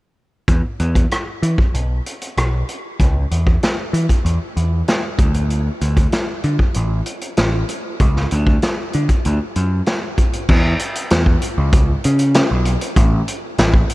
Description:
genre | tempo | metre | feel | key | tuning
psychedelic rock | 96 BPM | 4/4 | straight | unclear | A4 = 440 Hz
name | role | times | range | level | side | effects
growling picked electric bass | bass | 0.5-13.8 s | A1 to E3 | -17 LUFS | equal | overdrive
vintage drum kit | drums | 0.5-13.9 s | crash cymbal, hi-hat, kick drum, rim click, snare drum | -17 LUFS | equal | none
room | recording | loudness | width
light reverb | none | -15 LUFS | side -19 dB against mid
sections
0.5-10.5 A section; 10.5-13.9 B section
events
none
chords
none

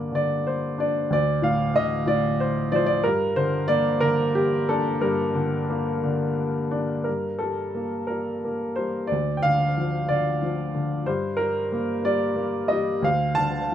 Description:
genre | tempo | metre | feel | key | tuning
classical, lyrical solo piano | 60 BPM (dotted quarters) | 6/8 | uneven beats, rubato | G minor | A4 = 440 Hz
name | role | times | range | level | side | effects
warm upright piano | solo | 0.0-13.7 s | D2 to A5 | -22 LUFS | equal | none
room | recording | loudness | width
light reverb | none | -22 LUFS | side -10 dB against mid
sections
0.0-7.1 A section; 7.1-13.7 B section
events
none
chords
0.0 Gm; 1.1 Dm; 3.0 Gm; 7.1 Gmadd9; 9.1 Dm; 11.1 Gm; 13.0 Dm

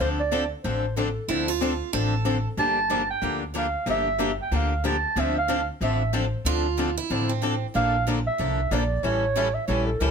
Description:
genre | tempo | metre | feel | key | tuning
acoustic string swing (jazz manouche) | 186 BPM | 4/4 | swing 60% on 8ths | D minor | A4 = 440 Hz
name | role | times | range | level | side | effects
dark clarinet | melody | 0.0-10.1 s | A4 to A5 | -26 LUFS | right 3 dB | none
picked steel-string acoustic guitar | accompaniment | 0.0-10.1 s | D3 to A4 | -33 LUFS | right 5 dB | none
picked swing-style acoustic guitar | accompaniment | 0.0-10.1 s | D3 to A4 | -29 LUFS | left 7 dB | none
upright bass | bass | 0.0-10.1 s | G1 to D2 | -28 LUFS | equal | none
picked steel-string acoustic guitar | second line | 1.3-2.5, 6.5-7.7 s | C4 to A4 | -28 LUFS | right 9 dB | none
room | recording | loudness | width
light reverb | none | -22 LUFS | side -6 dB against mid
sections
0.0-10.1 A section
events
none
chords
0.0 Dm7; 2.6 Gm9; 5.2 Dm9; 7.8 Bbmaj7; 9.0 A7b9

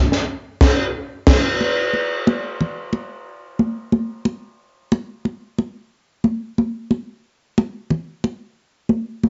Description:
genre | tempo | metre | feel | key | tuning
funk | 90 BPM | 4/4 | straight | none | none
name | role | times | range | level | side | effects
crisp fusion drum kit | drums | 0.1-1.5 s | crash cymbal, kick drum, snare drum | -19 LUFS | equal | cassette tape
congas | percussion | 1.6-9.3 s | none | -21 LUFS | equal | none
room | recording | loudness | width
light reverb | home recording on cassette, nothing above 7.7 kHz | -21 LUFS | mono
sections
0.0-1.6 A section; 1.6-9.3 B section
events
band accent 0.3-1.6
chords
none

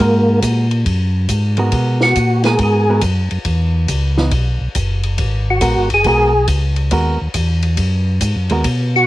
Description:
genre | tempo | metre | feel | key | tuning
soul jazz organ trio | 139 BPM | 4/4 | swing 66% on 8ths | G# minor | A4 = 440 Hz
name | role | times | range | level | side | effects
percussive tonewheel organ | melody | 0.0-9.1 s | A#3 to G#4 | -14 LUFS | equal | slow rotary speaker, chorus vibrato, cassette tape
hollow-body jazz guitar | accompaniment | 0.0-8.6 s | E3 to A#4 | -19 LUFS | right 2 dB | cassette tape
mellow tonewheel organ | bass | 0.0-9.1 s | F#1 to B2 | -16 LUFS | equal | overdrive, chorus vibrato, slow rotary speaker
compact cocktail drum kit | drums | 0.4-8.8 s | hi-hat, kick drum, ride cymbal, snare drum | -22 LUFS | left 1 dB | cassette tape
room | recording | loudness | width
small room ambience | home recording on cassette | -13 LUFS | side -16 dB against mid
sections
0.0-9.1 A section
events
tonewheel organ solo 0.0-9.1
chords
0.0 G#m9; 3.5 C#m7; 5.2 G#m9

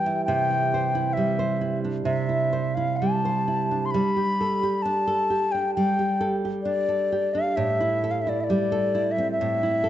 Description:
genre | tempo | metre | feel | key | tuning
celtic folk, Celtic slow air | 67 BPM | 4/4 | rubato | unclear | A4 = 440 Hz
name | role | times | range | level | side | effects
wooden flute | melody | 0.0-9.9 s | D5 to C6 | -24 LUFS | left 2 dB | none
nylon-string guitar | accompaniment | 0.0-9.9 s | A2 to C5 | -25 LUFS | right 3 dB | none
room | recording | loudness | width
moderate concert hall reverb, RT60 2.1 s | dark, warm production, nothing above 8.0 kHz, faint mains hum | -22 LUFS | side -11 dB against mid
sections
0.0-9.9 A section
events
none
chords
0.3 Cadd9; 3.9 Gsus2; 7.6 Am7

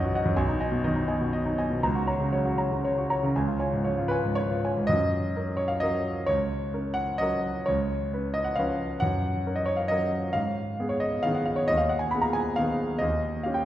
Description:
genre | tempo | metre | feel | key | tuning
classical, piano waltz | 112-142 BPM | 3/4 | rubato | F# major | A4 = 439 Hz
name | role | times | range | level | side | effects
clear grand piano | solo | 0.0-13.7 s | B1 to B5 | -24 LUFS | equal | none
room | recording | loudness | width
wet recital hall reverb, RT60 1.7 s | heard from further back in the room | -24 LUFS | side -13 dB against mid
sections
0.0-4.9 A section; 4.9-13.7 B section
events
none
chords
0.4 G#m/B; 1.8 F#/C#; 3.4 C#; 4.9 F#; 7.7 C#7; 9.0 F#; 10.4 G#m; 13.0 D#7

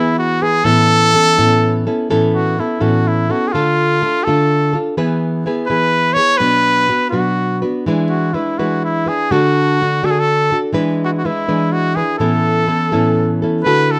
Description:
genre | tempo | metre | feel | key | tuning
mexican folk | 83 BPM (dotted quarters) | 6/8 | straight | A major | A4 = 440 Hz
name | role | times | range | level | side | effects
bright trumpet | melody | 0.0-14.0 s | E4 to C#5 | -18 LUFS | equal | none
nylon-string guitar | accompaniment | 0.0-14.0 s | A2 to B4 | -18 LUFS | equal | none
room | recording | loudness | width
moderate studio reverb, RT60 0.5 s | close, detailed microphones | -15 LUFS | mono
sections
0.0-2.1 A section; 2.1-13.6 A section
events
none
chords
0.0 E; 0.6 Aadd9; 3.5 Dm; 5.0 E; 6.4 Bm; 7.9 E7; 9.3 D; 10.7 E7; 12.2 Aadd9

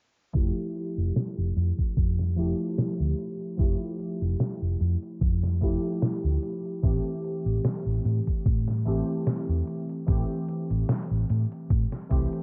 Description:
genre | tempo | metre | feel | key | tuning
vaporwave | 74 BPM | 4/4 | swing 54% on 16ths | F major | A4 = 440 Hz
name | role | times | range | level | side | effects
warbly lo-fi synth keys | accompaniment | 0.3-12.4 s | E3 to G4 | -34 LUFS | equal | lush chorus, analog delay
hollow-body short-scale fingered electric bass | bass | 0.3-12.3 s | F1 to A2 | -28 LUFS | equal | none
detuned 8-bit digital drum machine | drums | 0.3-12.4 s | hi-hat, snare drum | -31 LUFS | equal | none
electronic kick drum | drums | 0.3-12.3 s | none | -28 LUFS | equal | overdrive
room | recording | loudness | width
light reverb, digital ambience | low-pass filter, nothing above 7.5 kHz | -27 LUFS | mono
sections
0.3-12.4 A section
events
filter sweep 0.3-12.4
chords
0.3 Fmaj9; 6.8 Am7

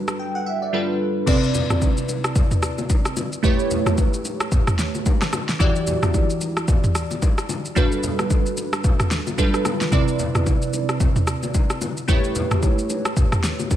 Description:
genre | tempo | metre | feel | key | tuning
amapiano | 111 BPM | 4/4 | swing 58% on 16ths | unclear | A4 = 438 Hz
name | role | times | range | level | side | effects
glassy digital keys | accompaniment | 0.0-13.8 s | C3 to G5 | -23 LUFS | right 2 dB | chorus
deep house drum kit | drums | 0.1-13.8 s | crash cymbal, kick drum, rim click, shaker, snare drum, toms | -20 LUFS | equal | none
congas and bongos | percussion | 1.3-13.8 s | none | -28 LUFS | left 3 dB | none
room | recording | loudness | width
light reverb | none | -18 LUFS | side -11 dB against mid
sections
0.0-1.3 A section; 1.3-13.8 B section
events
silent gap 0.2-1.3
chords
0.0 Gmaj7; 0.7 G9; 1.3 Cmaj7; 3.4 A9; 5.6 Em7; 7.8 Gmaj7; 9.4 G9; 9.9 Cmaj7; 12.1 A9

